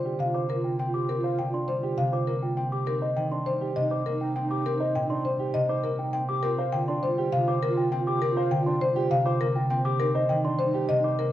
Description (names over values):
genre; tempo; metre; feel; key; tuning
classical, minimalist pattern music; 101 BPM; 3/4; straight; G minor; A4 = 440 Hz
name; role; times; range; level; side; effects
marimba with medium mallets; melody; 0.0-11.3 s; Bb4 to G5; -29 LUFS; left 2 dB; none
mellow hollow alto flute; second line; 0.0-11.2 s; Eb4 to F4; -32 LUFS; right 3 dB; none
concert harp; accompaniment; 0.0-11.3 s; Bb2 to C4; -29 LUFS; equal; none
dark grand piano; arpeggios; 0.1-11.2 s; D4 to C5; -34 LUFS; right 7 dB; none
celesta; arpeggios; 0.3-11.2 s; Eb5 to D6; -32 LUFS; left 2 dB; none
room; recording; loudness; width
wet stone room reverb, RT60 1.2 s; worn, warbling old tape, cassette tape, warbly pitch drift; -24 LUFS; side -13 dB against mid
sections
0.0-11.3 A section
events
none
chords
0.0 Gm7; 2.9 Cm7; 6.4 Gm7; 10.0 Cm7